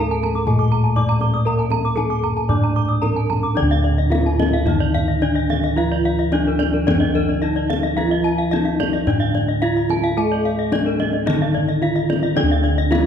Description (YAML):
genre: Balinese gamelan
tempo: 109 BPM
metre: 4/4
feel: straight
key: D pelog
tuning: A4 = 441 Hz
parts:
  - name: gamelan-type bronze metallophone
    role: melody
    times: 0.0-13.1 s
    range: D4 to D5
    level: -22 LUFS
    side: equal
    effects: none
  - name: gamelan-type bronze metallophone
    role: accompaniment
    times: 0.0-13.1 s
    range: D3 to D4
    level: -26 LUFS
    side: right 1 dB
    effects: none
  - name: gamelan-type bronze metallophone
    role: arpeggios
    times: 0.0-13.1 s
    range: Bb4-40c to Eb6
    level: -25 LUFS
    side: left 4 dB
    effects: none
  - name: gamelan-type bossed gongs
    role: bass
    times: 0.0-13.1 s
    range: D2 to Bb4-40c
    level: -21 LUFS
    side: equal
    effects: none
  - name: gamelan-type bronze metallophone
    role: arpeggios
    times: 0.1-12.7 s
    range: D5 to D6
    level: -28 LUFS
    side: right 8 dB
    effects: none
  - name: kendang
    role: percussion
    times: 0.2-13.1 s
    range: none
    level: -25 LUFS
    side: left 3 dB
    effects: none
room: moderate scoring stage reverb, RT60 1.7 s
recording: dark, warm production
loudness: -16 LUFS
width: side -8 dB against mid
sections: 0.0-3.6 A section; 3.6-13.1 B section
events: none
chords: none